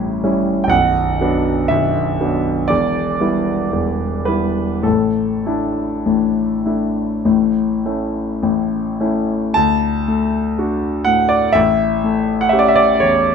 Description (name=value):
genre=classical, romantic nocturne for solo piano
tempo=50-63 BPM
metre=4/4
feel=rubato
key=unclear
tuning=A4 = 440 Hz
part: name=warm grand piano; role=solo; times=0.0-13.3 s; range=B0 to A5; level=-15 LUFS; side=equal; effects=none
room=light reverb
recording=minimal, uncompressed stereo recording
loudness=-15 LUFS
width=side -6 dB against mid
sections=0.0-9.5 A section; 9.5-13.3 B section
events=none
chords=0.0 A7b9; 0.7 Bm; 2.7 Em7; 4.8 Asus4; 7.2 A; 9.5 D; 11.6 A7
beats=| 0.71 1.69 2.69 3.71 | 4.85 6.05 7.24 8.41 | 9.55 10.58 11.55 12.53